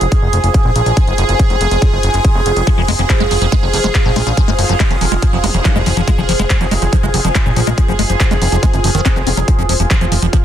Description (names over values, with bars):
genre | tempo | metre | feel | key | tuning
psychedelic trance | 141 BPM | 4/4 | straight | F phrygian | A4 = 440 Hz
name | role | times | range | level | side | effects
evolving wavetable pad | sustained chords | 0.0-10.4 s | F4 to Ab4 | -20 LUFS | right 4 dB | phaser, built-in reverb, sidechain pumping
fat analog bass | bass | 0.0-10.3 s | F1 to Bb1 | -16 LUFS | equal | none
big-room dance drum kit | drums | 0.0-10.4 s | handclaps, hi-hat | -21 LUFS | left 1 dB | small room reverb
airy breathy pad | texture | 0.0-10.4 s | F4 to Ab5 | -22 LUFS | left 2 dB | chorus, phaser, sidechain pumping
electronic kick drum | drums | 0.1-10.4 s | none | -14 LUFS | equal | small room reverb
liquid acid bass | riff | 2.7-10.4 s | Eb3 to C4 | -19 LUFS | moving between left 8 dB and right 5 dB | phaser, auto-pan, sidechain pumping, dub echo
zap | sound effects | 5.4-5.5 s | none | -27 LUFS | equal | none
room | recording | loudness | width
little or no reverb | dense, heavily limited modern master | -11 LUFS | side -10 dB against mid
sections
0.0-10.4 A section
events
none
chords
0.0 F5